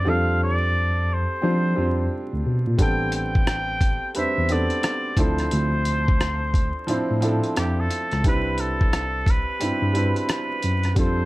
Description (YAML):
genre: R&B, neo-soul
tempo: 88 BPM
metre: 4/4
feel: swing 62% on 16ths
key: unclear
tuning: A4 = 440 Hz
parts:
  - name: trumpet with straight mute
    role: melody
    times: 0.0-11.3 s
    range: G4 to G5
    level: -26 LUFS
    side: equal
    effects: none
  - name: clear baby grand piano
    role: accompaniment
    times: 0.0-11.3 s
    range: F3 to C5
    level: -26 LUFS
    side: right 1 dB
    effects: none
  - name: tine electric piano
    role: bass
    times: 0.0-11.3 s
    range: C2 to F3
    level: -24 LUFS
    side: equal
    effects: medium stereo tremolo
  - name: dusty soul sampler-style drum kit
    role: drums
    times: 2.8-11.2 s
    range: hi-hat, kick drum, rim click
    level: -22 LUFS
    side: equal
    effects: none
room: little or no reverb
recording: vinyl crackle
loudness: -20 LUFS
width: side -19 dB against mid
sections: 0.0-11.3 A section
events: none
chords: 0.1 F69; 2.8 Am11; 5.2 Dm9; 8.2 Cmaj9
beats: | 0.05 0.74 1.42 2.10 | 2.78 3.46 4.14 4.83 | 5.51 6.19 6.87 7.55 | 8.24 8.92 9.60 10.28 | 10.96